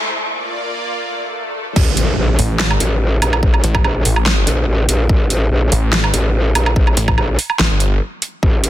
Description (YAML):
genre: heavy wobble dubstep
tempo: 144 BPM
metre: 4/4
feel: half-time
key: unclear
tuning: A4 = 440 Hz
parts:
  - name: supersaw pad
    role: sustained chords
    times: 0.0-1.7 s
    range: Bb3 to D5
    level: -24 LUFS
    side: equal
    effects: sidechain pumping
  - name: riser, swell and impact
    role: sound effects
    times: 0.0-3.4 s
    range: none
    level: -23 LUFS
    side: equal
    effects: none
  - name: growl bass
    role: bass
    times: 1.8-8.7 s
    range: A1 to Bb1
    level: -15 LUFS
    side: equal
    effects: chorus, overdrive
  - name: big-room dance drum kit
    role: drums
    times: 1.8-8.7 s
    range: crash cymbal, hi-hat, snare drum, woodblock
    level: -19 LUFS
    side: right 2 dB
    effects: overdrive
  - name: electronic kick drum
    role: drums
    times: 1.8-8.5 s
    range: none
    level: -15 LUFS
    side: equal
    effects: overdrive
  - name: snarling distorted saw bass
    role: bass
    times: 2.4-8.0 s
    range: G1 to A1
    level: -16 LUFS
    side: equal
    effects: distortion, overdrive
room: little or no reverb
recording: dense, heavily limited modern master, high-pass filter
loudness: -14 LUFS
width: side -13 dB against mid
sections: 0.0-1.8 A section; 1.8-8.7 B section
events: build-up 0.0-1.8; break 0.1-1.8; swell 1.1-1.8; drop 1.8-8.7; impact 1.8-3.4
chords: 0.1 Bb; 1.8 Gmadd9 (rootless)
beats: | 0.10 0.51 0.93 1.34 | 1.76 2.18 2.60 3.01 | 3.43 3.85 4.26 4.68 | 5.09 5.51 5.93 6.34 | 6.76 7.18 7.59 8.01 | 8.43